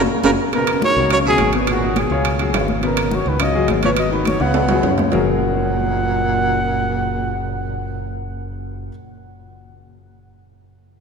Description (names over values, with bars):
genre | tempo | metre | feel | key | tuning
Afro-Cuban jazz | 209 BPM | 4/4 | straight | F# major | A4 = 441 Hz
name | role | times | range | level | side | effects
dark trumpet | melody | 0.0-8.2 s | F#4 to F#5 | -21 LUFS | equal | none
mellow baritone saxophone | second line | 0.0-8.2 s | A#2 to B3 | -24 LUFS | right 4 dB | none
warm concert grand piano | accompaniment | 0.0-8.9 s | B2 to C#5 | -23 LUFS | left 4 dB | none
modern bright fingered electric bass | bass | 0.0-8.9 s | F#1 to F#2 | -23 LUFS | equal | none
congas | percussion | 0.2-5.2 s | none | -27 LUFS | left 2 dB | none
timbales | percussion | 0.2-5.2 s | none | -24 LUFS | right 4 dB | none
room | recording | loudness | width
wet cathedral reverb, RT60 5.2 s | recorded in a church or concert hall | -16 LUFS | side -6 dB against mid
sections
0.5-5.1 A section; 5.1-7.4 B section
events
drum fill 0.0-0.5, 4.6-5.1; band accent 0.0-0.5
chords
0.0 F#maj7(no3); 0.5 C#13sus4; 1.1 C#7sus4; 1.7 G#m11; 2.3 C#sus4; 2.8 G#m11; 3.4 C#9sus4; 4.0 G#m7; 4.6 C#7sus4; 5.1 F#add9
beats
0.24 | 0.53 0.82 1.10 1.39 | 1.68 1.97 2.25 2.54 | 2.83 3.11 3.40 3.69 | 3.98 4.26 4.55 4.84 | 5.13 5.41 5.70 5.99 | 6.28 6.57 6.85 7.14